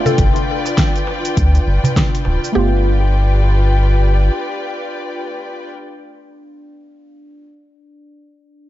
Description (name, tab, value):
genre	organic downtempo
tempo	101 BPM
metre	4/4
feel	swing 59% on 16ths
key	G mixolydian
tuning	A4 = 440 Hz
part	deep mellow chord stab	accompaniment	0.0-7.4 s	A3 to F4	-24 LUFS	right 2 dB	chorus, phaser, sidechain pumping, ping-pong delay
part	rich studio string section	sustained chords	0.0-5.7 s	F4 to G5	-22 LUFS	left 2 dB	sidechain pumping
part	mallet-like synth pluck	arpeggios	0.0-2.8 s	G4 to A4	-24 LUFS	left 2 dB	chorus, ping-pong delay
part	bronze singing bowl	texture	0.0-2.6 s	D4 to D5	-33 LUFS	left 1 dB	none
part	deep house drum kit	drums	0.1-2.5 s	hi-hat, shaker, snare drum	-22 LUFS	right 1 dB	overdrive
part	darbuka	percussion	0.1-2.4 s	none	-22 LUFS	right 3 dB	none
part	round analog bass	bass	0.2-4.3 s	D1 to D2	-13 LUFS	equal	none
part	electronic kick drum	drums	0.2-2.1 s	none	-17 LUFS	equal	overdrive
room	light reverb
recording	dark, warm production, nothing above 7.6 kHz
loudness	-13 LUFS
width	side -14 dB against mid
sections	0.0-2.6 A section; 2.6-4.9 B section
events	none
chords	0.0 G7